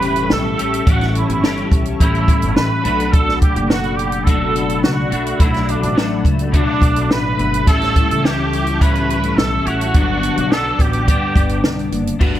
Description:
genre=indie pop, bedroom pop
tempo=106 BPM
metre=4/4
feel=straight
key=G lydian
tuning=A4 = 440 Hz
part: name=clear trumpet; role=melody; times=0.0-11.9 s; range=D4 to B4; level=-20 LUFS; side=right 3 dB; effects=ensemble chorus, slapback echo
part: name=electric guitar at the edge of break-up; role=accompaniment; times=0.0-12.4 s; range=G2 to B4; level=-20 LUFS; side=left 3 dB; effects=ensemble chorus, warbly pitch drift
part: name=hollow soft pad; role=sustained chords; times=0.0-12.2 s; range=A4 to D6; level=-29 LUFS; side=equal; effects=ensemble chorus
part: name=upright bass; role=bass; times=0.0-12.4 s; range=E1 to C#2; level=-22 LUFS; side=equal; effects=none
part: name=compact cocktail drum kit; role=drums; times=0.0-12.4 s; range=crash cymbal, hi-hat, kick drum, snare drum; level=-16 LUFS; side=equal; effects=none
room=small room ambience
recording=none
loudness=-14 LUFS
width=side -12 dB against mid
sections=0.0-12.2 A section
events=none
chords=0.0 A7; 2.9 Bm7; 7.7 A7; 9.9 Gmaj7

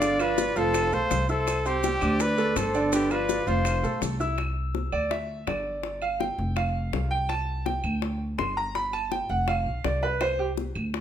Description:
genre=latin, Cuban son and guajira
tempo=165 BPM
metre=4/4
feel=straight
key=C major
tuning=A4 = 438 Hz
part: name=warm trumpet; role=melody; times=0.0-4.0 s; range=G4 to D5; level=-27 LUFS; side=equal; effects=none
part: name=breathy bright concert flute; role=second line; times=0.0-4.0 s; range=B4 to F5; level=-33 LUFS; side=left 3 dB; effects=none
part: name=bright baby grand piano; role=arpeggios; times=0.0-10.5 s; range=D3 to E6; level=-28 LUFS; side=right 2 dB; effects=none
part: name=upright bass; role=bass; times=0.0-11.0 s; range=F1 to D2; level=-30 LUFS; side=equal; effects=none
part: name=bongos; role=percussion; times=0.0-11.0 s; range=none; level=-33 LUFS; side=left 10 dB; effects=none
part: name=maracas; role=percussion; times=0.0-4.4 s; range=none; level=-38 LUFS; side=right 5 dB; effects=none
part: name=claves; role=percussion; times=0.2-10.9 s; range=none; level=-38 LUFS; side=right 2 dB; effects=none
room=moderate large studio reverb, RT60 1.0 s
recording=minimal, uncompressed stereo recording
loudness=-24 LUFS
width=side -9 dB against mid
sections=0.0-4.4 A section; 4.4-11.0 B section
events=grand piano solo 4.4-11.0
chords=0.0 G7; 0.7 F; 1.5 C; 2.2 D5; 2.9 G7; 3.7 F; 4.4 Csus2; 5.1 Em7; 5.8 Fsus2; 6.6 F5; 7.3 C5; 8.0 Gmadd11; 8.8 Fadd9; 9.5 F5; 10.2 Csus2

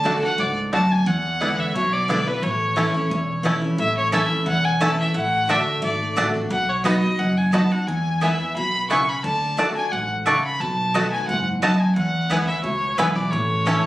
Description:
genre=bluegrass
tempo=176 BPM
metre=4/4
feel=swing 53% on 8ths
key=A major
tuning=A4 = 440 Hz
part: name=clear fiddle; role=melody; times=0.0-13.9 s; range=B4 to C#6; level=-23 LUFS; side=left 1 dB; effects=plate reverb
part: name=picked steel-string acoustic guitar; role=accompaniment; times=0.0-13.9 s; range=E2 to F#4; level=-23 LUFS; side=equal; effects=none
part: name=upright bass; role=bass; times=0.0-13.8 s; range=E1 to E2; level=-29 LUFS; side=equal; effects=none
part: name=bluegrass banjo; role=melody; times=0.1-13.7 s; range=A3 to F#4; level=-26 LUFS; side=right 1 dB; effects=plate reverb
part: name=mandolin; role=stabs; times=4.1-13.8 s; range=A3 to B5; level=-23 LUFS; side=right 1 dB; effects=none
room=moderate studio reverb, RT60 0.6 s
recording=recorded on a phone in the room, club reverb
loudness=-19 LUFS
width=side -16 dB against mid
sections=0.0-13.9 A section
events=none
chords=0.0 D; 1.1 E7; 2.4 A; 5.1 D/A; 6.5 B; 7.9 E; 9.2 D; 10.6 B7; 12.0 E; 13.3 A

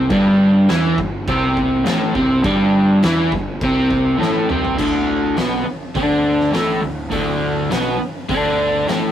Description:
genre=garage rock duo or trio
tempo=103 BPM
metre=4/4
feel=straight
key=unclear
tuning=A4 = 439 Hz
part: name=crunchy overdriven guitar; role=riff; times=0.0-9.1 s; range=D2 to E4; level=-15 LUFS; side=equal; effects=none
part: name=fuzz picked electric bass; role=bass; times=0.0-9.1 s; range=D1 to E2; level=-26 LUFS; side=equal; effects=overdrive
part: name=oversized low-tuned drum kit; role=drums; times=0.1-9.0 s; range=crash cymbal, hi-hat, kick drum, snare drum, toms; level=-24 LUFS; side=equal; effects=none
room=light reverb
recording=rough rehearsal-room recording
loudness=-15 LUFS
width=side -10 dB against mid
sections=0.0-4.8 A section; 4.8-9.1 B section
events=drum fill 4.2-4.8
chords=0.1 Am7/G; 4.8 D5

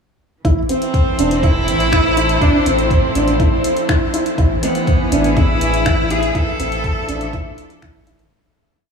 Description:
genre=piano and strings electronica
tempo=122 BPM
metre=4/4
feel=straight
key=A harmonic minor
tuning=A4 = 440 Hz
part: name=felt-muted upright piano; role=riff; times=0.4-8.2 s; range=C4 to E4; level=-20 LUFS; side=right 1 dB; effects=analog delay
part: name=warm sub bass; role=bass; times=0.4-8.3 s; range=E1 to A1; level=-22 LUFS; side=equal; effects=tube saturation, sidechain pumping
part: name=electronic kick drum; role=drums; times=0.4-7.9 s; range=none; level=-17 LUFS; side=equal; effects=none
part: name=dark studio string section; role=sustained chords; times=0.5-8.3 s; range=E3 to E5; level=-22 LUFS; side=left 1 dB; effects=sidechain pumping
part: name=deep house drum kit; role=drums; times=0.5-8.3 s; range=finger snaps, hi-hat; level=-28 LUFS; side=left 2 dB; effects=none
part: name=bright cello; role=melody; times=0.7-7.8 s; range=B3 to A4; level=-19 LUFS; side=equal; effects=analog delay
room=moderate huge ambient reverb, RT60 7.8 s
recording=dreamy mix soaked in reverb, small room ambience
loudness=-14 LUFS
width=side -6 dB against mid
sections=0.4-8.3 drop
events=drop 0.4-8.3; fade-out 5.7-8.3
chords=0.4 Am; 2.4 F/A; 4.4 E/A; 6.3 Dmadd9/A

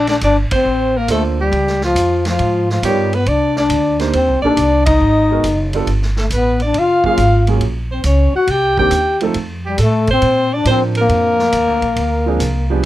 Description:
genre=jazz, small-group swing and bop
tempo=138 BPM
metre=4/4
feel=swing 68% on 8ths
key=Bb major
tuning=A4 = 441 Hz
part: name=breathy trombone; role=melody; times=0.0-12.8 s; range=F3 to G4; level=-16 LUFS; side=left 3 dB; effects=none
part: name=clear alto saxophone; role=second line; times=0.0-12.8 s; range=F4 to G5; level=-21 LUFS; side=right 3 dB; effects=none
part: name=upright bass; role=bass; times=0.0-12.9 s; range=Gb1 to Bb2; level=-18 LUFS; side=right 1 dB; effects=none
part: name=vintage drum kit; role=drums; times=0.1-12.9 s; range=hi-hat, kick drum, ride cymbal, snare drum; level=-26 LUFS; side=right 1 dB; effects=none
part: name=warm concert grand piano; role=accompaniment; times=1.1-12.8 s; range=Eb3 to Db5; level=-20 LUFS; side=right 6 dB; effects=none
room=light reverb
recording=close, detailed microphones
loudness=-13 LUFS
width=side -14 dB against mid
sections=0.0-12.9 A section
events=band accent 0.4, 4.8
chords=0.0 Bbmaj9; 1.5 Db13; 3.3 Cm9; 5.0 Abm9; 5.9 Gsus2; 6.7 Gbmaj9; 8.5 Cm9; 9.4 F; 10.2 Bbmaj9; 12.0 Dm7b5

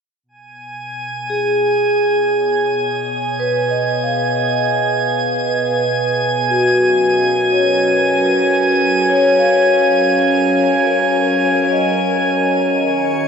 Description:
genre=ambient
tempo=58 BPM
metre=3/4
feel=straight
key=B lydian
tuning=A4 = 440 Hz
part: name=evolving wavetable pad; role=sustained chords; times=0.2-13.3 s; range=B2 to D#5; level=-22 LUFS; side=right 1 dB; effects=chorus, built-in reverb
part: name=drifting glass-harmonics texture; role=texture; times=0.5-13.3 s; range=G#5 to C#6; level=-18 LUFS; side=right 2 dB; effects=chorus, built-in reverb
part: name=vibraphone with medium mallets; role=arpeggios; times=1.3-13.3 s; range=F#4 to E#5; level=-16 LUFS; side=left 1 dB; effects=ping-pong delay
room=wet lush hall reverb, RT60 3.0 s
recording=none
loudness=-13 LUFS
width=side -6 dB against mid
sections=0.2-13.3 A section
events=fade-in on ambient pad 0.2-13.3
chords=0.2 B6; 6.5 F#add9

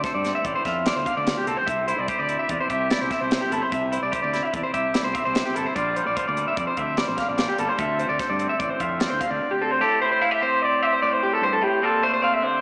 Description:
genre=math rock and midwest emo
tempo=147 BPM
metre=5/4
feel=straight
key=unclear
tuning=A4 = 439 Hz
part: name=twangy electric guitar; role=accompaniment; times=0.0-12.6 s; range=D2 to A4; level=-25 LUFS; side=equal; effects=spring reverb
part: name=electric guitar through a small old amp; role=arpeggios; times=0.0-12.6 s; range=G4 to F5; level=-23 LUFS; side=equal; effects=slapback echo
part: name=crisp fusion drum kit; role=drums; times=0.0-9.3 s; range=hi-hat, kick drum, snare drum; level=-28 LUFS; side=equal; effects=none
part: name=fuzz fingered electric bass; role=bass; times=0.1-9.4 s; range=G1 to G2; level=-32 LUFS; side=equal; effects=overdrive
room=moderate lush hall reverb, RT60 1.9 s, small room ambience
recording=big arena sound, small speaker sound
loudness=-20 LUFS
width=side -32 dB against mid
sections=0.0-9.8 A section; 9.8-12.6 B section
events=none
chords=0.0 Dm9; 1.7 Am7; 5.8 Bb69; 7.8 Dm9; 9.8 Am7; 11.8 Bbmaj9

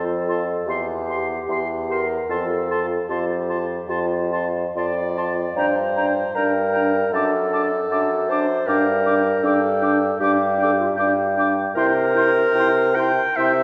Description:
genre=classical, slow romantic movement for wind quintet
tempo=76 BPM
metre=4/4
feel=uneven beats, rubato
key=F major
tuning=A4 = 440 Hz
part: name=warm oboe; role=second line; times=0.0-13.6 s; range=G5 to C6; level=-30 LUFS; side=equal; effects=none
part: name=warm French horn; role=accompaniment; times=0.0-13.5 s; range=D4 to G4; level=-30 LUFS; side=equal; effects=none
part: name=warm clarinet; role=accompaniment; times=0.0-13.6 s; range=F4 to G5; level=-26 LUFS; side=equal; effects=none
part: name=warm bassoon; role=bass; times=0.0-13.6 s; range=E2 to C3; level=-25 LUFS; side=equal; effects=none
part: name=mellow concert flute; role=melody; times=0.3-13.5 s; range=Bb5 to D6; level=-32 LUFS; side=equal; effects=none
room=wet church reverb, RT60 2.8 s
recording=recorded in a church or concert hall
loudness=-21 LUFS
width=mono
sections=0.0-13.6 A section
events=none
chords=0.0 F; 0.7 C/E; 2.3 F; 5.6 Gm; 7.1 D/F#; 8.7 Gm; 11.8 C7

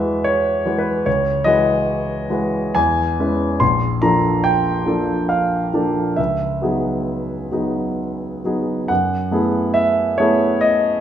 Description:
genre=classical, impressionist solo piano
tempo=63-76 BPM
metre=3/4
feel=rubato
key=unclear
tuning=A4 = 440 Hz
part: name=warm grand piano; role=solo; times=0.0-11.0 s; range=A#1 to C6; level=-16 LUFS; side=equal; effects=none
room=wet recital hall reverb, RT60 1.5 s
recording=minimal, uncompressed stereo recording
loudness=-16 LUFS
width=side -10 dB against mid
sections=0.0-11.0 A section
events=none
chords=0.0 Eadd9; 1.1 C#m11; 2.8 E6; 3.6 A#maj7; 6.2 C#m11; 8.9 F#m11

